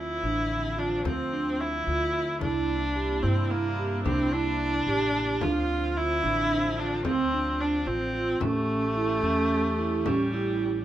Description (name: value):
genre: contemporary instrumental, chamber music in an uneven meter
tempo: 220 BPM (eighths)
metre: 11/8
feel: straight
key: D minor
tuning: A4 = 441 Hz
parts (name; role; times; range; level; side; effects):
- rich viola; second line; 0.0-10.8 s; G3 to F4; -28 LUFS; equal; none
- dark studio string section; sustained chords; 0.0-10.8 s; C3 to G4; -36 LUFS; equal; none
- vibraphone with soft mallets; arpeggios; 0.0-10.8 s; C4 to G4; -29 LUFS; right 3 dB; none
- upright bass; bass; 0.0-10.8 s; A1 to G2; -32 LUFS; left 1 dB; none
- frame drum; percussion; 0.5-10.5 s; none; -34 LUFS; left 4 dB; none
room: light reverb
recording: close, detailed microphones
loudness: -24 LUFS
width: side -12 dB against mid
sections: 0.0-10.8 A section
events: none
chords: 0.0 Dm7; 2.4 C9; 5.4 Dm7; 8.4 A7